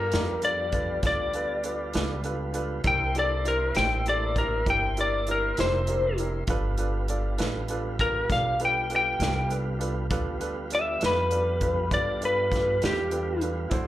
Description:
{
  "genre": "slow blues",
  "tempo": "66 BPM (dotted quarters)",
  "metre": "12/8",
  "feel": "straight",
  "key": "G mixolydian",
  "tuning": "A4 = 440 Hz",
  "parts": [
    { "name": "lightly driven lead guitar", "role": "melody", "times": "0.0-13.4 s", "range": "G4 to G5", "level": "-25 LUFS", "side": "left 2 dB", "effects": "slapback echo" },
    { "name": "clear upright piano", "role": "accompaniment", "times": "0.0-13.9 s", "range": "D4 to D5", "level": "-33 LUFS", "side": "right 3 dB", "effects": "slapback echo" },
    { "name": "tonewheel organ", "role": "sustained chords", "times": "0.0-13.9 s", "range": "F#3 to C5", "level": "-37 LUFS", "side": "right 1 dB", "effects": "slow rotary speaker" },
    { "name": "upright bass", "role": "bass", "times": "0.0-13.9 s", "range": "F1 to G2", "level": "-30 LUFS", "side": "equal", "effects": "none" },
    { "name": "natural country drum kit", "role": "drums", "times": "0.1-13.9 s", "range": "hi-hat, kick drum, snare drum", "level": "-31 LUFS", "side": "equal", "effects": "none" }
  ],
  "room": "little or no reverb",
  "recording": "live gig heard through the venue's PA, club reverb",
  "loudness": "-24 LUFS",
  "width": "side -14 dB against mid",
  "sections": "0.0-13.9 A section",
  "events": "none",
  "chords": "0.0 G7; 2.9 C7; 6.5 G7"
}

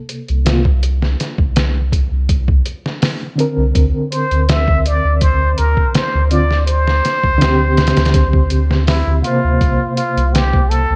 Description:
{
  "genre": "trip hop",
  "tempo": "82 BPM",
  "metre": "4/4",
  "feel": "straight",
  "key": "D minor",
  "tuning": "A4 = 440 Hz",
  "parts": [
    { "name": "reed electric piano", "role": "accompaniment", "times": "0.0-11.0 s", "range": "C3 to C5", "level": "-22 LUFS", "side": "equal", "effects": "overdrive, tremolo" },
    { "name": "trip hop sampler-style drum kit", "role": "drums", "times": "0.1-10.9 s", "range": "hi-hat, kick drum, snare drum", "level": "-19 LUFS", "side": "equal", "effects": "studio reverb" },
    { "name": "soft dub sub bass", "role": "bass", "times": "0.3-11.0 s", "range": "C2 to D2", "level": "-18 LUFS", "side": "equal", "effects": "none" },
    { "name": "trumpet with plunger mute", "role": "melody", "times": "4.1-11.0 s", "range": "E4 to E5", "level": "-21 LUFS", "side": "equal", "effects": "tape echo" }
  ],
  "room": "light reverb, digital ambience",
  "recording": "worn, warbling old tape, cassette tape, warbly pitch drift",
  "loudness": "-15 LUFS",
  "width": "mono",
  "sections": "0.0-11.0 A section",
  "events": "none",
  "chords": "0.0 C7(no3); 3.8 D7(no3); 9.6 C7sus4"
}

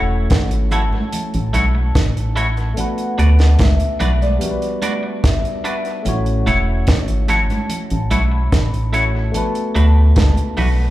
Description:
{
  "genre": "lovers rock reggae",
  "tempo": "73 BPM",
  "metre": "4/4",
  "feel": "straight",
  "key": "A major",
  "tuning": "A4 = 440 Hz",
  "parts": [
    { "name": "vibraphone with soft mallets", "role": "melody", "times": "0.0-10.9 s", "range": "D5 to B5", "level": "-27 LUFS", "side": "left 1 dB", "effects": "dub echo, slapback echo" },
    { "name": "barky tine electric piano", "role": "accompaniment", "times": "0.0-10.9 s", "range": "G3 to C#5", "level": "-25 LUFS", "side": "left 2 dB", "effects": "overdrive, slapback echo" },
    { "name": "organ-like FM bass", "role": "bass", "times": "0.0-10.9 s", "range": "E1 to D2", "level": "-15 LUFS", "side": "equal", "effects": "none" },
    { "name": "deep reggae drum kit", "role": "drums", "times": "0.3-10.8 s", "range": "hi-hat, kick drum, snare drum", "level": "-20 LUFS", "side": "equal", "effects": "dub echo" },
    { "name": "twangy electric guitar", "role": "stabs", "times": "0.7-10.7 s", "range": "A3 to D5", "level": "-24 LUFS", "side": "right 1 dB", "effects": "spring reverb, slapback echo" },
    { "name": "congas", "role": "percussion", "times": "0.7-10.8 s", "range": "none", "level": "-29 LUFS", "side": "right 4 dB", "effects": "none" }
  ],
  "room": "small room ambience",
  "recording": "live gig heard through the venue's PA, club reverb",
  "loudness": "-14 LUFS",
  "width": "side -15 dB against mid",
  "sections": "0.0-10.9 A section",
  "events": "none",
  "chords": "0.0 A6; 2.8 D6; 4.4 Gmaj7; 6.1 A6; 9.3 D6"
}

